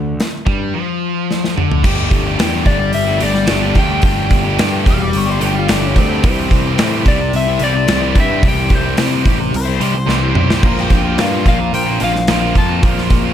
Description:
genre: classic rock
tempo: 109 BPM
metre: 4/4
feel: straight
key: unclear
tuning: A4 = 440 Hz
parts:
  - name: crunchy overdriven guitar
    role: riff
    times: 0.0-13.3 s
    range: Bb2 to G4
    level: -20 LUFS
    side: left 13 dB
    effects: none
  - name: tight distorted guitar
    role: riff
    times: 0.0-13.3 s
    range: Bb2 to G4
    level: -21 LUFS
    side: right 14 dB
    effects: distortion
  - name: fuzz picked electric bass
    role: bass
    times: 0.0-13.3 s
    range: E1 to C3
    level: -19 LUFS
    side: equal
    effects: overdrive
  - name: big rock drum kit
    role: drums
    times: 0.2-13.2 s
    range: crash cymbal, hi-hat, kick drum, snare drum, toms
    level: -16 LUFS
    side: equal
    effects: none
  - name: electric slide guitar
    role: melody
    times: 2.7-12.8 s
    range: C5 to A5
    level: -21 LUFS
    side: left 4 dB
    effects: tape echo
  - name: octave-fuzz lead guitar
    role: second line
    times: 4.9-11.5 s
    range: C4 to F5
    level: -24 LUFS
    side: left 3 dB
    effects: distortion
  - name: clear grand piano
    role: accompaniment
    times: 10.6-13.3 s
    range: F4 to D5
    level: -28 LUFS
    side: right 2 dB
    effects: none
room: light reverb, studio ambience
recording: none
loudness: -12 LUFS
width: side -10 dB against mid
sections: 0.0-1.8 A section; 1.8-13.3 B section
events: drum fill 1.3-1.8, 10.1-10.6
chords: 0.0 Csus4 (rootless); 1.8 Gsus2; 6.2 C; 10.6 Bbsus2

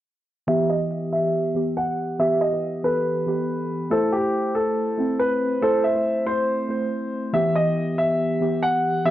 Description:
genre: hip hop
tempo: 140 BPM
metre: 4/4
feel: half-time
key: E harmonic minor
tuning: A4 = 440 Hz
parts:
  - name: clear concert grand piano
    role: melody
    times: 0.5-9.1 s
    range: G4 to F#5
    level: -23 LUFS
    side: equal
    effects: low-pass filter, cassette tape
  - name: muted felt-like synth keys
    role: accompaniment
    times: 0.5-9.1 s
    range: E3 to C5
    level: -23 LUFS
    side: equal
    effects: chorus, phaser, low-pass filter, cassette tape
room: light reverb, studio reverb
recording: home recording on cassette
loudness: -20 LUFS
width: side -13 dB against mid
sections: 0.5-9.1 A section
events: filter sweep 0.5-9.1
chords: 0.5 Em; 3.9 Am; 7.3 Em

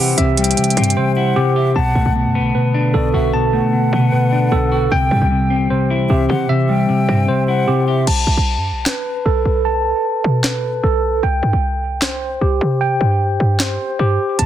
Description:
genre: hip hop, trap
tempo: 152 BPM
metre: 4/4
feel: half-time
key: B phrygian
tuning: A4 = 442 Hz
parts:
  - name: breathy mellow silver concert flute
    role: second line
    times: 0.0-8.1 s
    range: D5 to G5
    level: -24 LUFS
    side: left 3 dB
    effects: tape echo
  - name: semi-hollow electric guitar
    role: accompaniment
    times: 0.0-8.1, 14.4-14.5 s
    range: B2 to G4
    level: -17 LUFS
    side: left 1 dB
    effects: wide subtle chorus, low-pass filter
  - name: dark analog pad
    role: sustained chords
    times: 0.0-8.0 s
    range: D3 to A4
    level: -25 LUFS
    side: equal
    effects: chorus, phaser
  - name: tine electric piano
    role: arpeggios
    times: 0.0-14.5 s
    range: G4 to A5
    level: -19 LUFS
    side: right 2 dB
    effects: medium stereo tremolo, low-pass filter, tape echo
  - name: short 808-style bass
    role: bass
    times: 0.2-14.5 s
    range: B1 to C3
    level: -19 LUFS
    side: equal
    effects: none
  - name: trap drum kit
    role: drums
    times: 0.2-1.0, 8.1-14.5 s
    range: crash cymbal, handclaps, hi-hat, snare drum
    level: -20 LUFS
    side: equal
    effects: none
room: light reverb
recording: dense, heavily limited modern master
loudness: -14 LUFS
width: side -11 dB against mid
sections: 0.0-1.8 A section; 1.8-8.1 B section; 8.1-14.5 C section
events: drums muted 1.0-1.8; hi-hats muted 8.1-14.4; filter sweep 8.1-14.4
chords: 0.0 C; 1.8 Bm7; 4.9 C; 8.1 B5; 11.2 C5

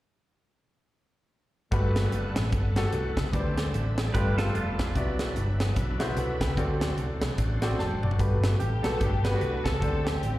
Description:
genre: uptempo gospel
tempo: 148 BPM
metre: 4/4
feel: swing 59% on 8ths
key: G major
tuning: A4 = 440 Hz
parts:
  - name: clear upright piano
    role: accompaniment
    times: 1.7-10.4 s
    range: G2 to A5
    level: -32 LUFS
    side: left 2 dB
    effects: slapback echo
  - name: bright tonewheel organ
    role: sustained chords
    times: 1.7-8.2 s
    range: F#3 to F#5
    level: -38 LUFS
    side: right 2 dB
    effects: fast rotary speaker, overdrive, chorus vibrato
  - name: mellow French horn section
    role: sustained chords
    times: 1.7-10.4 s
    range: F#3 to A4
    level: -41 LUFS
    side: right 1 dB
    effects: none
  - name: hollow-body short-scale fingered electric bass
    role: bass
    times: 1.7-10.4 s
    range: F1 to D2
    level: -28 LUFS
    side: equal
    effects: none
  - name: crisp fusion drum kit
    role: drums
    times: 1.7-10.3 s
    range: hi-hat, kick drum, snare drum, toms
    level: -30 LUFS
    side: equal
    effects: none
  - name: clean electric guitar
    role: second line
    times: 4.1-4.9 s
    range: D4 to B4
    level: -35 LUFS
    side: right 6 dB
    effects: slapback echo
  - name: clear baby grand piano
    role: melody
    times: 8.6-10.4 s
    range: G4 to B4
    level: -34 LUFS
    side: right 3 dB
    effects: slapback echo
  - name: dark studio string section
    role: melody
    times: 8.6-10.4 s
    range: B3 to B4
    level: -34 LUFS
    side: left 4 dB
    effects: slapback echo
room: small room ambience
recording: live gig heard through the venue's PA, recital hall reverb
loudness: -24 LUFS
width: side -16 dB against mid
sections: 1.7-8.2 A section; 8.2-10.4 B section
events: drum fill 7.8-8.2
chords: 1.7 Gmaj9; 3.3 D7sus4; 4.1 G9; 5.0 Cmaj9#11; 6.6 D7; 8.2 Gmaj9; 9.8 D7sus4

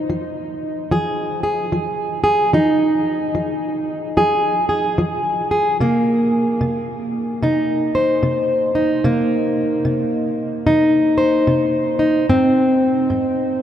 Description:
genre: blues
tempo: 74 BPM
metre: 4/4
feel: swing 63% on 8ths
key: C minor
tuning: A4 = 440 Hz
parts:
  - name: fingerpicked plugged-in steel-string acoustic guitar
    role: solo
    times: 0.0-13.6 s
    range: Ab2 to C5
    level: -16 LUFS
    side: equal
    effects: none
room: wet huge ambient reverb, RT60 8.0 s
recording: in a vast, echoing space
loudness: -16 LUFS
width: side -10 dB against mid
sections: 0.0-13.6 A section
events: none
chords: 0.0 Fm7; 5.8 Cm7; 12.3 Ab

